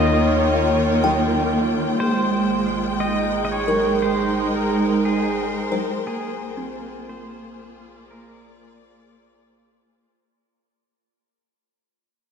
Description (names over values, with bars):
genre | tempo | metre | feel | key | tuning
ambient | 59 BPM | 4/4 | straight | unclear | A4 = 438 Hz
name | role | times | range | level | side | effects
pedal steel guitar | melody | 0.0-9.6 s | Ab4 to Eb5 | -26 LUFS | left 1 dB | ping-pong delay
rich symphonic string section | sustained chords | 0.0-10.1 s | Eb3 to G5 | -21 LUFS | right 1 dB | none
buzzing kalimba | arpeggios | 0.0-9.4 s | C4 to G5 | -27 LUFS | right 1 dB | ping-pong delay
warm sub bass | bass | 0.0-10.1 s | Ab1 to Eb2 | -31 LUFS | left 1 dB | none
room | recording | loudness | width
wet cathedral reverb, RT60 4.9 s | dark, warm production | -18 LUFS | side -6 dB against mid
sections
0.0-10.1 A section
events
fade-out on sub bass 0.0-10.1; fade-out 0.0-10.1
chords
0.0 Eb7; 2.0 Abmaj7; 6.1 Bb7